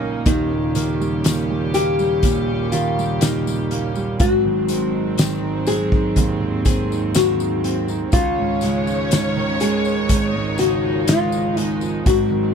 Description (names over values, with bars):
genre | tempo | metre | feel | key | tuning
pop ballad | 61 BPM | 4/4 | straight | Db major | A4 = 441 Hz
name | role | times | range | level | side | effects
clear grand piano | accompaniment | 0.0-12.5 s | Eb1 to Eb4 | -22 LUFS | right 5 dB | none
rich studio string section | sustained chords | 0.0-12.5 s | Eb2 to G4 | -27 LUFS | equal | none
picked steel-string acoustic guitar | arpeggios | 0.0-12.5 s | Ab2 to Ab4 | -30 LUFS | left 2 dB | none
nylon-string guitar | melody | 0.3-12.5 s | Eb4 to Ab4 | -22 LUFS | left 4 dB | none
loose indie drum kit | drums | 0.3-12.3 s | hi-hat, kick drum, snare drum | -20 LUFS | left 1 dB | none
tambourine | percussion | 0.3-12.0 s | none | -33 LUFS | left 20 dB | none
dark studio violin section | second line | 8.1-12.0 s | Db5 | -27 LUFS | left 1 dB | none
room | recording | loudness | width
little or no reverb | none | -17 LUFS | side -7 dB against mid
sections
0.0-12.5 A section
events
none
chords
0.3 Eb7; 4.2 Ab7; 8.1 Dbadd9